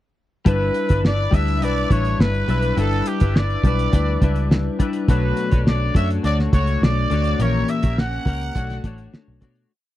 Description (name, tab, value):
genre	indie pop, bedroom pop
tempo	104 BPM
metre	4/4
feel	straight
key	unclear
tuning	A4 = 440 Hz
part	growling trumpet	melody	0.5-9.1 s	G4 to F#5	-25 LUFS	equal	lush chorus, tape echo
part	twelve-string electric guitar	accompaniment	0.5-9.7 s	A#2 to C#5	-24 LUFS	left 4 dB	analog chorus, vibrato effect
part	vintage muted picked electric bass	bass	0.5-9.6 s	G1 to B2	-21 LUFS	equal	none
part	cloth-damped thuddy drum kit	drums	0.5-9.7 s	hi-hat, kick drum, snare drum	-18 LUFS	equal	none
room	little or no reverb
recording	dry, close 1970s-style studio recording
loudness	-17 LUFS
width	side -14 dB against mid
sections	0.5-9.7 A section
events	fade-out 7.4-9.7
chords	0.5 G6; 5.1 Bm9; 7.4 F#7b9/A#; 8.5 Bm9